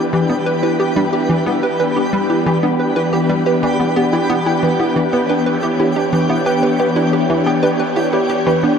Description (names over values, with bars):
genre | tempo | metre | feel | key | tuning
ambient, sequencer-driven space music | 90 BPM | 4/4 | straight | E dorian | A4 = 440 Hz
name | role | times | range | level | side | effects
phased string machine | sustained chords | 0.0-8.8 s | E3 to C#5 | -18 LUFS | left 1 dB | ensemble chorus, phaser
hollow square pluck | riff | 0.0-8.7 s | E3 to B4 | -19 LUFS | equal | chorus, tape echo
twinkling granular texture | texture | 0.0-8.8 s | G4 to B5 | -23 LUFS | equal | built-in reverb
warbly dusty pluck | arpeggios | 0.1-8.8 s | D4 to G5 | -20 LUFS | right 2 dB | chorus, auto-pan, tape echo
room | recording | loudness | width
wet shimmer reverb, RT60 7.1 s | worn, warbling old tape, cassette tape, warbly pitch drift | -14 LUFS | side -7 dB against mid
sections
0.0-8.8 A section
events
none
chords
0.0 Em7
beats
0.30 0.97 1.63 | 2.30 2.97 3.63 4.30 | 4.97 5.63 6.30 6.97 | 7.63 8.30